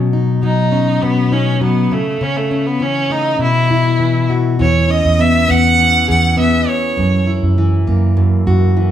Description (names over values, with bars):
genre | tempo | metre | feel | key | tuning
acoustic pop | 101 BPM | 4/4 | straight | E major | A4 = 440 Hz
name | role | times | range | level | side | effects
fingerpicked plugged-in steel-string acoustic guitar | accompaniment | 0.0-8.9 s | F#2 to G#4 | -16 LUFS | left 2 dB | none
clear violin | melody | 0.4-7.3 s | A3 to F#5 | -16 LUFS | right 2 dB | none
vintage muted fingered electric bass | bass | 4.6-8.9 s | E2 to F#2 | -14 LUFS | right 2 dB | none
room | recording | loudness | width
wet large studio reverb, RT60 0.9 s | band playing live in one room | -12 LUFS | side -10 dB against mid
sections
0.0-4.6 A section; 4.6-8.9 B section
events
none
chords
0.0 Badd9; 1.9 A/C#; 3.4 Bsus4; 4.6 E6; 7.0 F#7